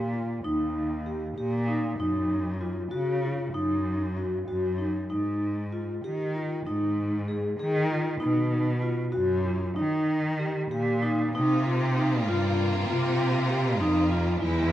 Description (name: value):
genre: contemporary instrumental, chamber music in an uneven meter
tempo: 194 BPM (eighths)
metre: 5/8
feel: straight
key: unclear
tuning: A4 = 439 Hz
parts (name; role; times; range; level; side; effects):
- vibraphone with soft mallets; arpeggios; 0.0-14.6 s; Eb4 to Ab4; -28 LUFS; equal; none
- warm cello; bass; 0.0-14.7 s; Eb2 to Eb3; -28 LUFS; equal; none
- clear studio string section; sustained chords; 11.3-14.7 s; C3 to F4; -31 LUFS; equal; none
room: moderate concert hall reverb, RT60 2.3 s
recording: none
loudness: -25 LUFS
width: side -12 dB against mid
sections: 0.0-11.4 A section; 11.4-14.7 B section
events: none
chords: 0.0 Eb; 2.0 Gb5; 5.1 Ab5; 8.2 B; 9.8 Eb; 11.4 C7sus4